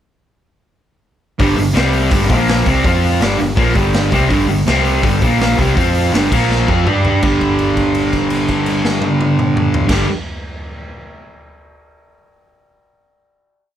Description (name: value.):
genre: garage rock duo or trio.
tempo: 165 BPM.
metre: 4/4.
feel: straight.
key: unclear.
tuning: A4 = 441 Hz.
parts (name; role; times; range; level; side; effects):
fuzz guitar; riff; 1.4-10.1 s; G2 to G4; -14 LUFS; equal; distortion.
hollow-body short-scale fingered electric bass; bass; 1.4-10.1 s; G1 to G2; -19 LUFS; equal; tube saturation.
raw garage drum kit; drums; 1.4-10.0 s; crash cymbal, hi-hat, kick drum, snare drum, toms; -18 LUFS; equal; none.
room: little or no reverb.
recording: none.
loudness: -12 LUFS.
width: side -10 dB against mid.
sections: 1.4-7.2 riff; 7.2-10.1 final chord.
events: drum fill 6.5-7.2; held note 7.2-9.9.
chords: 1.4 G5; 1.8 C5; 2.1 G5; 2.3 Bb5; 2.7 C5; 2.8 F5; 3.2 G5; 4.7 C5; 5.0 G5; 5.2 Bb5; 5.6 C5; 5.8 F5; 6.1 G5; 6.3 Bb5; 6.7 G5.